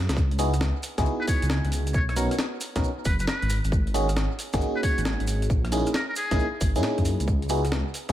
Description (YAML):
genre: UK garage, two-step garage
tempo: 135 BPM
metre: 4/4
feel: swing 67% on 16ths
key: C# dorian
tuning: A4 = 440 Hz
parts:
  - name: dark detuned saw bass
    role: bass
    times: 0.0-8.1 s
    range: F#1 to A#2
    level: -26 LUFS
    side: equal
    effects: none
  - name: breakbeat sampler-style drum kit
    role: drums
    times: 0.1-8.1 s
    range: hi-hat, rim click, snare drum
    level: -32 LUFS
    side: left 1 dB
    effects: studio reverb
  - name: maracas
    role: percussion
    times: 0.1-8.1 s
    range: none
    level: -40 LUFS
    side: right 3 dB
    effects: analog delay
  - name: electronic kick drum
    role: drums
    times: 0.2-8.1 s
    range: none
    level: -25 LUFS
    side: equal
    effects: studio reverb
  - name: FM electric piano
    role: stabs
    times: 0.4-8.1 s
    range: A#3 to A#4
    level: -29 LUFS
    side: equal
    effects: chorus, phaser, analog delay
  - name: trumpet with metal mute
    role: melody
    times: 1.2-6.5 s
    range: G#4 to C#5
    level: -32 LUFS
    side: equal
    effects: analog delay
room: light reverb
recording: echo-heavy mix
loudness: -23 LUFS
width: side -12 dB against mid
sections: 0.0-8.1 A section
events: drum fill 0.0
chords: 0.2 C#m11; 1.9 Bmaj9; 3.5 G#7sus4; 5.5 F#13/A#; 7.3 C#m11